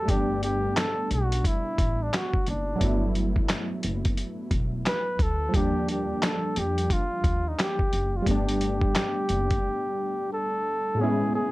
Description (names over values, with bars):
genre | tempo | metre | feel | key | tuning
lo-fi hip hop | 88 BPM | 4/4 | swing 64% on 16ths | G major | A4 = 440 Hz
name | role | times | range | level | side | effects
mellow flugelhorn | melody | 0.0-11.5 s | D4 to B4 | -29 LUFS | equal | low-pass filter
warm analog keys | accompaniment | 0.0-11.5 s | A2 to E4 | -30 LUFS | equal | chorus, low-pass filter
upright bass | bass | 0.1-9.6 s | E1 to F2 | -29 LUFS | equal | none
dusty soul sampler-style drum kit | drums | 0.1-9.6 s | handclaps, hi-hat, kick drum, snare drum | -26 LUFS | equal | none
room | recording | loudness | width
light reverb | none | -24 LUFS | side -19 dB against mid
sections
0.0-11.0 A section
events
break 9.6-11.0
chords
0.1 Gmaj9; 5.5 Ebmaj9; 8.3 Gadd9; 11.0 Amaj9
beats
| 0.08 0.76 1.45 2.13 | 2.81 3.49 4.17 4.85 | 5.54 6.22 6.90 7.58 | 8.26 8.95 9.63 10.31 | 10.99